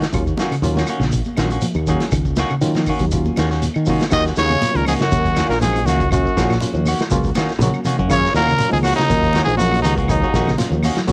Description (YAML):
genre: afrobeat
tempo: 121 BPM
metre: 4/4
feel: straight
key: Eb minor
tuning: A4 = 440 Hz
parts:
  - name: semi-hollow electric guitar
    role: stabs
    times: 0.0-11.0 s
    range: Eb3 to Gb4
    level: -28 LUFS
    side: equal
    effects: cassette tape, tape echo
  - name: fingered electric bass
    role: bass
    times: 0.0-11.1 s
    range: Bb1 to Eb3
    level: -22 LUFS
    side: equal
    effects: none
  - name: vintage drum kit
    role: drums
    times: 0.0-11.1 s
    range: hi-hat, kick drum, snare drum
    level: -27 LUFS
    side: equal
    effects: cassette tape
  - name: shekere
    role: percussion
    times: 0.0-11.1 s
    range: none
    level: -30 LUFS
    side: equal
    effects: none
  - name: barky reed electric piano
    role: accompaniment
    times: 0.1-11.1 s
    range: Gb3 to Ab4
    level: -27 LUFS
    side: equal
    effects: overdrive, fast tremolo, cassette tape
  - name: clean electric guitar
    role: arpeggios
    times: 0.1-11.1 s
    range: Bb2 to Gb3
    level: -26 LUFS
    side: equal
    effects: cassette tape
  - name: claves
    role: percussion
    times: 0.1-11.0 s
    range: none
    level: -37 LUFS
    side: equal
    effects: none
  - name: congas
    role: percussion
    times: 0.4-11.0 s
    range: none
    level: -30 LUFS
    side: equal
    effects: none
  - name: growling trumpet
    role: melody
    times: 4.1-10.6 s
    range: Eb4 to Eb5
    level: -22 LUFS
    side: equal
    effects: tape echo
  - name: mellow trombone section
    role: second line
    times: 4.1-10.5 s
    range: Eb2 to Eb3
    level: -27 LUFS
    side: equal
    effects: cassette tape
room: light reverb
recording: home recording on cassette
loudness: -18 LUFS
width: mono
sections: 0.0-4.1 A section; 4.1-11.1 B section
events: none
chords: 0.0 Ebm7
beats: | 0.13 0.63 1.13 1.63 | 2.13 2.63 3.12 3.62 | 4.12 4.62 5.12 5.62 | 6.11 6.61 7.11 7.61 | 8.10 8.60 9.10 9.59 | 10.09 10.59 11.09